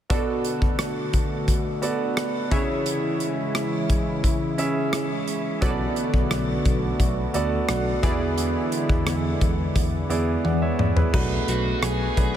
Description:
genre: 1980s-style pop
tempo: 87 BPM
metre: 4/4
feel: straight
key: B dorian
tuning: A4 = 440 Hz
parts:
  - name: clear concert grand piano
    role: accompaniment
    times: 0.1-12.4 s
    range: B2 to F#5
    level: -27 LUFS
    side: right 2 dB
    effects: none
  - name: chorused pulse-width pad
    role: sustained chords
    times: 0.1-11.1 s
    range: C#3 to F#4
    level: -29 LUFS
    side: left 1 dB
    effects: none
  - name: funky polysynth comp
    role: stabs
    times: 0.1-12.4 s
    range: D4 to D5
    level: -33 LUFS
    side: equal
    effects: chorus
  - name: modern studio drum kit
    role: drums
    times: 0.1-12.3 s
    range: crash cymbal, hi-hat, kick drum, rim click, toms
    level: -25 LUFS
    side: equal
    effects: none
  - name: bell-like tine electric piano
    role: bass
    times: 5.6-12.4 s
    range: B1 to E2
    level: -27 LUFS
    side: equal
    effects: medium stereo tremolo
  - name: bluesy overdriven lead guitar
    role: melody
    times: 11.5-12.4 s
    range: F#4 to G#4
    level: -28 LUFS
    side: equal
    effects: distortion
room: moderate huge ambient reverb, RT60 7.0 s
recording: dreamy mix soaked in reverb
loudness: -21 LUFS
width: side -10 dB against mid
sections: 0.1-11.1 A section; 11.1-12.4 B section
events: drum fill 10.4-11.1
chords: 0.1 Bm7; 2.5 C#m; 5.6 Bm7; 8.0 E7; 11.1 Bm7

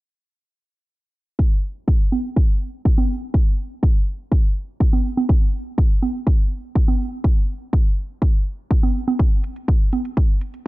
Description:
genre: house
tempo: 123 BPM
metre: 4/4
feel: straight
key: none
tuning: none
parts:
  - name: electronic kick drum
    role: drums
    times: 1.4-10.3 s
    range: none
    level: -16 LUFS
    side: equal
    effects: none
  - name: congas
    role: percussion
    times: 2.1-10.0 s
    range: none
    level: -25 LUFS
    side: right 4 dB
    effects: sidechain pumping on perc
  - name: electronic hi-hat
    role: drums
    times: 9.2-10.6 s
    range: none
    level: -54 LUFS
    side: right 4 dB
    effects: none
room: little or no reverb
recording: dense, heavily limited modern master, low-pass filter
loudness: -17 LUFS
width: side -20 dB against mid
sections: 1.4-10.7 A section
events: filter sweep 1.4-10.7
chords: none

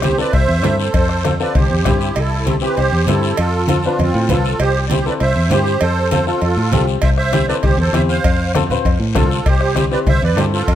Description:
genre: latin, cumbia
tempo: 197 BPM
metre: 4/4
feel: straight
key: C major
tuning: A4 = 445 Hz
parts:
  - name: musette accordion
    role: melody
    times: 0.0-10.8 s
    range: C4 to F5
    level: -19 LUFS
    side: right 4 dB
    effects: plate reverb, tape echo
  - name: clear upright piano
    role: accompaniment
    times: 0.0-10.6 s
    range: C4 to B4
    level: -22 LUFS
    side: left 7 dB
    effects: none
  - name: fingered electric bass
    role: bass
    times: 0.0-10.8 s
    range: C2 to A2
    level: -18 LUFS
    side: equal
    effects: none
  - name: bombo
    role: percussion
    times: 0.0-2.0, 7.0-10.8 s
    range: none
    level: -19 LUFS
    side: left 2 dB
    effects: none
  - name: congas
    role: percussion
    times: 0.0-10.5 s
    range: none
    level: -22 LUFS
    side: right 3 dB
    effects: none
  - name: cowbell and timbales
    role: percussion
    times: 0.0-10.8 s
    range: none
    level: -27 LUFS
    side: right 5 dB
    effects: none
  - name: guiro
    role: percussion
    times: 0.0-10.8 s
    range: none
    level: -30 LUFS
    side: left 9 dB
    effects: none
room: light reverb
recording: none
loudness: -13 LUFS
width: side -11 dB against mid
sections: 0.0-2.2 A section; 2.2-10.8 A section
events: none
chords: 0.0 C; 0.9 F; 1.6 C; 3.4 F; 4.6 C; 5.8 F; 7.0 C; 8.2 F; 9.5 C

